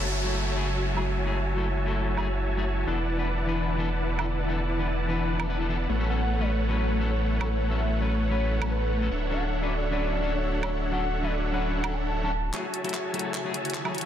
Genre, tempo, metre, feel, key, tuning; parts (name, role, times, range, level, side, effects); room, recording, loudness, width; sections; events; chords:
future bass; 149 BPM; 4/4; swing 54% on 16ths, half-time; A4 = 441 Hz
clean electric guitar; accompaniment; 0.0-13.9 s; E3 to B4; -34 LUFS; left 5 dB; digital delay
airy breathy pad; sustained chords; 0.0-14.1 s; C#3 to G#5; -38 LUFS; right 2 dB; chorus
concert harp; arpeggios; 0.0-1.6, 12.5-14.1 s; F#4 to A5; -40 LUFS; left 6 dB
dense compressed supersaw; riff; 0.0-14.1 s; A3 to A5; -30 LUFS; equal; cassette tape, low-pass filter, digital delay
saturated sub bass; bass; 0.0-12.5 s; D1 to A1; -28 LUFS; equal
downlifter and riser; sound effects; 0.0-2.9, 13.0-14.1 s; -36 LUFS; right 1 dB
pop drum kit; drums; 1.0-14.1 s; handclaps, hi-hat, woodblock; -34 LUFS; right 4 dB; low-pass filter on hats, soft clipping on snare, low-pass filter on snare, low-pass filter on perc, low-pass filter on toms, low-pass filter on cymbals
warm velvety synth lead; melody; 6.1-12.5 s; B4 to A5; -34 LUFS; left 1 dB; chorus, dub echo
light reverb, digital ambience; dense, heavily limited modern master; -25 LUFS; side -10 dB against mid
0.0-12.5 A section; 12.5-14.1 B section
filter sweep on drum 0.0-12.5; build-up 12.5-14.1; drum fill 12.5-14.1
0.0 F#m9; 2.9 E7sus4; 5.9 A69; 9.1 Dmaj7; 12.5 F#m9